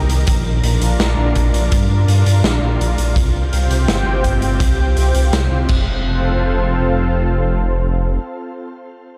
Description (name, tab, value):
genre	synthwave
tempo	83 BPM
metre	4/4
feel	straight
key	F major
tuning	A4 = 440 Hz
part	analog string pad	sustained chords	0.0-8.7 s	C3 to Bb5	-24 LUFS	equal	ensemble chorus, sidechain pumping, shimmer reverb
part	dark detuned saw bass	bass	0.0-8.2 s	F1 to G2	-19 LUFS	equal	sidechain pumping
part	raw garage drum kit	drums	0.1-5.8 s	crash cymbal, hi-hat, snare drum	-26 LUFS	equal	none
part	kick drum	drums	0.3-5.8 s	none	-23 LUFS	equal	none
room	light reverb, small room ambience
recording	dark, warm production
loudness	-16 LUFS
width	mono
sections	0.0-6.1 A section; 6.1-8.9 B section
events	none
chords	0.3 Bb; 3.2 Csus4; 5.7 F